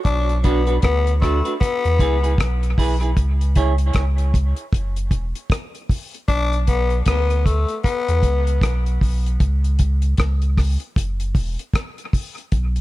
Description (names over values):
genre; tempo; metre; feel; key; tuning
dub reggae; 77 BPM; 4/4; swing 60% on 16ths; unclear; A4 = 437 Hz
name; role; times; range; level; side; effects
growling tenor saxophone; second line; 0.1-8.6 s; A3 to D4; -23 LUFS; left 5 dB; dub echo
warm sub bass; bass; 0.1-12.8 s; E1 to E2; -19 LUFS; equal; none
damped 70s drum kit; drums; 0.1-12.8 s; hi-hat, kick drum, rim click; -20 LUFS; equal; none
semi-hollow electric guitar; accompaniment; 0.4-3.7 s; D4 to C#5; -26 LUFS; right 5 dB; dub echo
room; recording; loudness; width
studio ambience; none; -17 LUFS; side -17 dB against mid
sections
0.0-12.5 A section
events
none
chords
0.1 Bm; 1.6 E; 3.2 N.C.; 4.7 Esus2; 6.3 Bm; 7.8 N.C.; 11.0 Esus2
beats
| 0.05 0.83 1.61 2.39 | 3.17 3.95 4.73 5.51 | 6.29 7.06 7.84 8.62 | 9.40 10.18 10.96 11.74 | 12.52